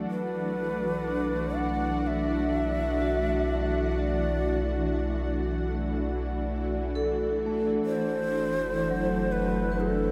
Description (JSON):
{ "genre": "ambient", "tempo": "62 BPM", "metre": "4/4", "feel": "straight", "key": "unclear", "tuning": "A4 = 440 Hz", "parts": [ { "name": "shimmering ambient pad", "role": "sustained chords", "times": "0.0-10.1 s", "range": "E3 to F#4", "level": "-34 LUFS", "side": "equal", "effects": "chorus, built-in reverb" }, { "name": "vibraphone with medium mallets", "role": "arpeggios", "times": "0.0-10.1 s", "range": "F#3 to B4", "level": "-33 LUFS", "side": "equal", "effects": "diffuse ambient delay" }, { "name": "warm sub bass", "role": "bass", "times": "0.0-10.1 s", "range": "F#1 to B1", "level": "-35 LUFS", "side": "equal", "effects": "none" }, { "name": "breathy reedy long shakuhachi", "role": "melody", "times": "0.1-10.1 s", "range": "A4 to F#5", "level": "-34 LUFS", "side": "equal", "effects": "diffuse ambient delay" } ], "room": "moderate huge ambient reverb, RT60 7.7 s", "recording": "none", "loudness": "-28 LUFS", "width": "mono", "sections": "0.0-10.1 A section", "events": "none", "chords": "0.1 Bm7; 7.8 F#m7b5" }